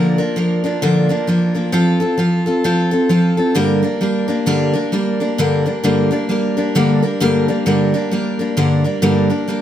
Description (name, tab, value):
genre	country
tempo	132 BPM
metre	4/4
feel	swing 60% on 8ths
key	G minor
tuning	A4 = 440 Hz
part	picked steel-string acoustic guitar	solo	0.0-9.6 s	G2 to Bb4	-14 LUFS	equal	none
room	light reverb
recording	close, detailed microphones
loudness	-14 LUFS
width	side -10 dB against mid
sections	0.0-5.4 A section; 5.4-9.0 B section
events	none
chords	0.0 Bb; 1.7 F; 3.6 Gm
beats	0.37 0.82 1.28 | 1.73 2.19 2.65 3.10 | 3.56 4.01 4.47 4.93 | 5.38 5.84 6.29 6.75 | 7.21 7.66 8.12 8.57 | 9.03 9.48